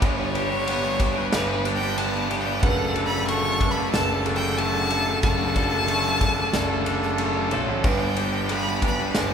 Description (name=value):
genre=post-rock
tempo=92 BPM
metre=4/4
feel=straight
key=G major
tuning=A4 = 437 Hz
part: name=clear violin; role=melody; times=0.0-9.3 s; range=B4 to C#6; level=-27 LUFS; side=left 1 dB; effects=none
part: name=warm studio string section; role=sustained chords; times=0.0-9.3 s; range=D4 to B5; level=-37 LUFS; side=equal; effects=none
part: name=felt-muted upright piano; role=arpeggios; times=0.0-9.3 s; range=D4 to E5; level=-36 LUFS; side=right 5 dB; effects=none
part: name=twangy electric guitar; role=arpeggios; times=0.0-9.3 s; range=G2 to A4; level=-32 LUFS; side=left 2 dB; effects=none
part: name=biting overdriven guitar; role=riff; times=0.0-9.3 s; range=F#3 to A4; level=-29 LUFS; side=right 8 dB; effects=none
part: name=thick fuzz guitar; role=riff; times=0.0-9.3 s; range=F#3 to B4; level=-29 LUFS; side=left 9 dB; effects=distortion
part: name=clear concert grand piano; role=bass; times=0.0-9.3 s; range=F#1 to B1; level=-27 LUFS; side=right 1 dB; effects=none
part: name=loose indie drum kit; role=drums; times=0.0-9.3 s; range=crash cymbal, kick drum, ride cymbal, snare drum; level=-28 LUFS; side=equal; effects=none
room=wet recital hall reverb, RT60 1.6 s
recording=recorded in a church or concert hall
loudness=-20 LUFS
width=side -7 dB against mid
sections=0.0-9.3 A section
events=none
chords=0.0 G; 2.6 D/F#; 7.8 G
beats=| 0.03 0.68 1.33 1.98 | 2.63 3.28 3.93 4.58 | 5.24 5.89 6.54 7.19 | 7.84 8.50 9.15